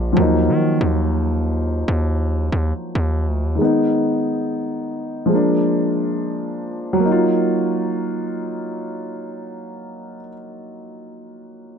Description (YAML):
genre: hip hop, drill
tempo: 140 BPM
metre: 4/4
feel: half-time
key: Eb harmonic minor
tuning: A4 = 442 Hz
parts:
  - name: dark grand piano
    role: accompaniment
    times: 0.0-11.8 s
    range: Eb3 to F4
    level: -20 LUFS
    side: equal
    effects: none
  - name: distorted 808-style bass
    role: bass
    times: 0.0-3.6 s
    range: Bb1 to Eb3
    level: -19 LUFS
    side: equal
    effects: distortion
room: small room reverb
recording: dry, gritty hardware recording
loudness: -18 LUFS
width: side -7 dB against mid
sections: 0.2-7.0 A section; 7.0-10.5 B section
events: none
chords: 0.2 Ebmadd9; 3.6 Abm; 5.3 Bb7; 7.0 Ebmadd9